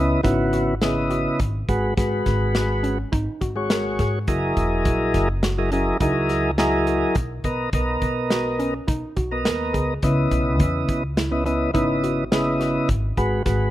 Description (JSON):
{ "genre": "progressive instrumental, band music in an uneven meter", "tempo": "104 BPM", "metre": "5/4", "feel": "straight", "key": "B major", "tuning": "A4 = 440 Hz", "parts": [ { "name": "tonewheel organ", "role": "accompaniment", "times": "0.0-13.7 s", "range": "C#3 to D#5", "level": "-22 LUFS", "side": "equal", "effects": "slow rotary speaker" }, { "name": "hollow square pluck", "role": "arpeggios", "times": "0.0-12.8 s", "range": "C#4 to A#4", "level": "-30 LUFS", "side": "right 2 dB", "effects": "chorus" }, { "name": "upright bass", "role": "bass", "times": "0.0-13.7 s", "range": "E1 to G#2", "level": "-25 LUFS", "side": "equal", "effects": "none" }, { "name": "loose indie drum kit", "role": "drums", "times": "0.2-13.6 s", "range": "hi-hat, kick drum, snare drum", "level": "-25 LUFS", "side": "equal", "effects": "none" } ], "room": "light reverb", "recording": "rough home demo mix", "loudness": "-19 LUFS", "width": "side -14 dB against mid", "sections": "0.0-13.7 A section", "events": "none", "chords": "0.0 C#m9; 1.4 G#m7; 4.3 F#13; 7.2 Bmaj7; 10.0 C#m9; 12.9 G#m7" }